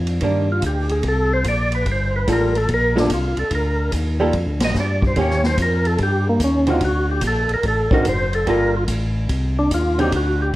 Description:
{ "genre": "soul jazz organ trio", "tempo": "145 BPM", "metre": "4/4", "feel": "swing 66% on 8ths", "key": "G minor", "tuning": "A4 = 440 Hz", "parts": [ { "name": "tonewheel organ", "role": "bass", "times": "0.0-10.6 s", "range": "F#1 to G2", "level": "-21 LUFS", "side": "equal", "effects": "overdrive, chorus vibrato, slow rotary speaker" }, { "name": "swinging big-band drum kit", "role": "drums", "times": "0.1-10.6 s", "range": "hi-hat, kick drum, ride cymbal, snare drum", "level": "-26 LUFS", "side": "equal", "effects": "none" }, { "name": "archtop guitar, miked and amplified", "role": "accompaniment", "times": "0.2-10.1 s", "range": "D3 to A4", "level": "-21 LUFS", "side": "right 1 dB", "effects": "none" }, { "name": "percussive tonewheel organ", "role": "melody", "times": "0.5-10.5 s", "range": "Bb3 to Eb5", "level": "-21 LUFS", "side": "equal", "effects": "slow rotary speaker, overdrive, chorus vibrato, plate reverb" } ], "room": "moderate large studio reverb, RT60 0.9 s", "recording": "worn, warbling old tape, cassette tape, warbly pitch drift", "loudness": "-17 LUFS", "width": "side -16 dB against mid", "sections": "0.0-10.6 A section", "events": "tonewheel organ solo 0.0-10.6", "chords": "0.0 Cm9; 1.9 Gm9; 5.2 Eb7; 6.8 D7; 8.5 Gm9; 9.3 Cmadd9", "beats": "| 0.22 0.63 1.04 1.46 | 1.87 2.28 2.69 3.10 | 3.52 3.93 4.34 4.75 | 5.17 5.58 5.99 6.41 | 6.82 7.23 7.64 8.06 | 8.47 8.88 9.29 9.71 | 10.12 10.54" }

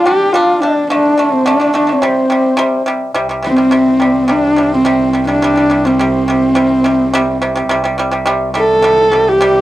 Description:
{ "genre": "mongolian traditional, Mongolian folk", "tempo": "106 BPM", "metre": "4/4", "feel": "straight", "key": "C zhi mode", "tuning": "A4 = 440 Hz", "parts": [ { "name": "warm horsehead fiddle", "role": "melody", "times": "0.0-9.6 s", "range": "C4 to A4", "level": "-12 LUFS", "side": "equal", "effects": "cassette tape" }, { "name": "breathy bright low xiao", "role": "second line", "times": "0.0-2.9 s", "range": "C5 to G5", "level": "-17 LUFS", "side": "left 3 dB", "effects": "cassette tape" }, { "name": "pipa", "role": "arpeggios", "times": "0.1-9.6 s", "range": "C3 to D4", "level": "-16 LUFS", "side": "right 1 dB", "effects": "cassette tape" }, { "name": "rich cello", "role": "drone", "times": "3.2-9.6 s", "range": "C2", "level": "-23 LUFS", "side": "left 1 dB", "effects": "stereo widening, cassette tape" } ], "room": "moderate small room reverb, RT60 0.5 s", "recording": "home recording on cassette", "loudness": "-10 LUFS", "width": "side -15 dB against mid", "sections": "0.0-3.2 A section; 3.2-9.6 B section", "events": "none", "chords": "0.0 G5; 0.9 D5; 2.0 C5", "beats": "0.34 | 0.90 1.47 2.03 2.60 | 3.16 3.73 4.30 4.86 | 5.43 6.00 6.57 7.13 | 7.70 8.27 8.84 9.41" }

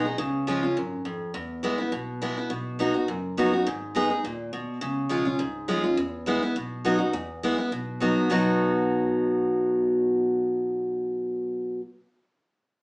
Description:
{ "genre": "bluegrass", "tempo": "207 BPM", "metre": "4/4", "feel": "straight", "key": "B major", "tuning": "A4 = 436 Hz", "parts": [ { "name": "picked steel-string acoustic guitar", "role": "accompaniment", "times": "0.0-11.8 s", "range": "E2 to G#4", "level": "-24 LUFS", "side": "equal", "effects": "none" }, { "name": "upright bass", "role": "bass", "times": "0.0-11.4 s", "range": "F#1 to E2", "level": "-41 LUFS", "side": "equal", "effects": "none" } ], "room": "wet studio reverb, RT60 0.6 s", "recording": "band playing live in one room, small speaker sound", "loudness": "-24 LUFS", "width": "side -30 dB against mid", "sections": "0.0-7.1 A section; 7.1-8.3 B section; 8.3-10.6 C section", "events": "none", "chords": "0.2 C#; 1.4 E; 2.5 B; 3.7 G#m; 4.8 C#; 6.0 E; 6.6 B; 7.1 E; 7.7 B", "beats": "| 0.19 0.48 0.77 1.06 | 1.35 1.64 1.93 2.22 | 2.51 2.79 3.08 3.37 | 3.66 3.95 4.24 4.53 | 4.82 5.11 5.40 5.69 | 5.98 6.27 6.56 6.85 | 7.14 7.42 7.71 8.01 | 8.29 8.59 8.88 9.16 | 9.46 9.74 10.04 10.32" }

